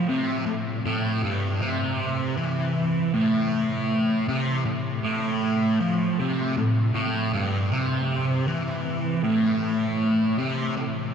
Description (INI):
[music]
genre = rock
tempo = 79 BPM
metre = 4/4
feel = straight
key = A minor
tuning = A4 = 441 Hz
[part]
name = fuzz guitar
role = solo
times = 0.0-11.1 s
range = G2 to F3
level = -22 LUFS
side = equal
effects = distortion, phaser, ping-pong delay
[sound]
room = wet huge ambient reverb, RT60 7.7 s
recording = dreamy mix soaked in reverb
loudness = -22 LUFS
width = side -7 dB against mid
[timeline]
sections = 0.0-11.1 A section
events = none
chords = none